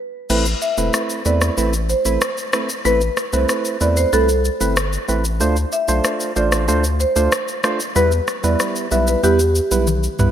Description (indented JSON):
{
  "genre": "dancehall",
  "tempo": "94 BPM",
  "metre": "4/4",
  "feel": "straight",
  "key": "A minor",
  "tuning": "A4 = 440 Hz",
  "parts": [
    { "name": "percussive organ stab", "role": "accompaniment", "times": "0.3-10.3 s", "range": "G3 to C5", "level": "-21 LUFS", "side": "right 3 dB", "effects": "chorus" },
    { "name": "round analog bass", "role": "bass", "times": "0.3-10.3 s", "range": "E1 to E2", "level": "-20 LUFS", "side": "equal", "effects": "none" },
    { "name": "island pop drum kit", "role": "drums", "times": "0.3-10.3 s", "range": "crash cymbal, rim click, shaker, toms", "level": "-22 LUFS", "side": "left 1 dB", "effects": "gated reverb" },
    { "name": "marimba with medium mallets", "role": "melody", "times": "0.6-9.7 s", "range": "G4 to E5", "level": "-21 LUFS", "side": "equal", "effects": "ping-pong delay" }
  ],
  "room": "moderate plate reverb, RT60 2.5 s",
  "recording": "bright 1980s-style digital production",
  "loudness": "-16 LUFS",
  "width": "side -10 dB against mid",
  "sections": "0.3-10.3 A section",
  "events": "break 0.0; kick muted 0.3-10.3; drum fill 9.9-10.3",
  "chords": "0.3 Amadd9; 5.4 Dm7; 8.0 Em",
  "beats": "| 0.30 0.94 1.58 2.21 | 2.85 3.49 4.13 4.77 | 5.41 6.04 6.68 7.32 | 7.96 8.60 9.24 9.87"
}